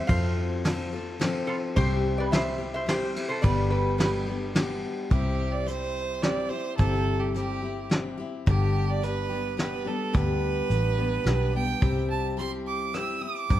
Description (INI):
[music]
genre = honky-tonk and classic country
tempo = 107 BPM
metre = 3/4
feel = straight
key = C major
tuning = A4 = 440 Hz
[part]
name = lap resonator guitar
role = melody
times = 0.0-4.8 s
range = F4 to F5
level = -31 LUFS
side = right 1 dB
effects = none
[part]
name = picked steel-string acoustic guitar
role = accompaniment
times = 0.0-13.6 s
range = G2 to A4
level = -30 LUFS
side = left 4 dB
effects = none
[part]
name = vintage muted fingered electric bass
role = bass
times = 0.1-13.6 s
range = G1 to G2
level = -28 LUFS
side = equal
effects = none
[part]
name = soft brush drum kit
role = drums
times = 0.1-13.6 s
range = hi-hat, kick drum, ride cymbal, rim click, snare drum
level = -28 LUFS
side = equal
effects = none
[part]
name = clear fiddle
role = second line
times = 5.1-13.6 s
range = G4 to E6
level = -31 LUFS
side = right 7 dB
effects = none
[sound]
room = moderate recital hall reverb, RT60 1.8 s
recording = dark, warm production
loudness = -24 LUFS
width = side -13 dB against mid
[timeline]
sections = 0.0-5.1 A section; 5.1-11.8 B section; 11.8-13.6 C section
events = fiddle solo 5.1-11.8, 11.8-13.6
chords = 0.1 F; 1.8 C; 3.4 G; 5.1 C; 8.5 G; 11.8 C